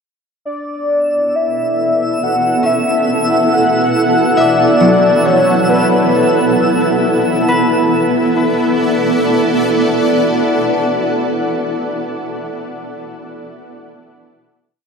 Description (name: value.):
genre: ambient.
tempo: 68 BPM.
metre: 4/4.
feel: straight.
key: B minor.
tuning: A4 = 438 Hz.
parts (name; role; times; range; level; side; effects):
twinkling granular texture; texture; 1.1-7.5 s; E6; -26 LUFS; equal; built-in reverb.
warm velvety synth lead; melody; 0.5-6.5 s; B4 to F#5; -16 LUFS; left 1 dB; chorus, ping-pong delay.
granular cloud pad; sustained chords; 1.3-11.7 s; B3 to F#5; -14 LUFS; equal; built-in reverb.
concert harp; arpeggios; 2.6-12.0 s; F#3 to E5; -21 LUFS; left 1 dB; ping-pong delay.
room: wet huge ambient reverb, RT60 7.3 s.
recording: in a vast, echoing space.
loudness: -11 LUFS.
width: side -5 dB against mid.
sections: 0.4-7.5 A section; 7.5-11.0 final chord.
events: fade-in on harp 0.4-7.5; fade-in on synth texture 0.4-7.5; filter sweep on ambient pad 0.4-7.5.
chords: 0.4 E5; 7.5 Bm7.